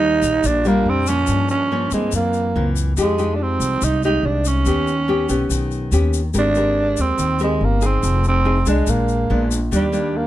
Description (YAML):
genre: bossa nova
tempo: 142 BPM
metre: 4/4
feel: straight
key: Eb major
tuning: A4 = 442 Hz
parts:
  - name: growling tenor saxophone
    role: melody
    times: 0.0-10.3 s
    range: G3 to Eb4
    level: -20 LUFS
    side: right 3 dB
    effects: none
  - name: nylon-string guitar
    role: accompaniment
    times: 0.0-10.3 s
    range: Gb2 to Bb4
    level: -22 LUFS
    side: left 3 dB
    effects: none
  - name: upright bass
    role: bass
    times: 0.0-10.3 s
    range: F1 to G2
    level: -21 LUFS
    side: equal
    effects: none
  - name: egg shaker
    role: percussion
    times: 0.2-10.1 s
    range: none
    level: -31 LUFS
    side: left 10 dB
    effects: none
room: light reverb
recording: close, detailed microphones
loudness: -16 LUFS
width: side -14 dB against mid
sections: 0.0-10.3 A section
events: none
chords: 0.0 Ebmaj7; 1.3 Gm7b5; 2.1 Gb7#11; 3.0 Fm9; 4.7 Ebaug7; 6.3 Abmaj9; 8.0 Fm7; 8.9 Bb7b9; 9.7 Ebmaj7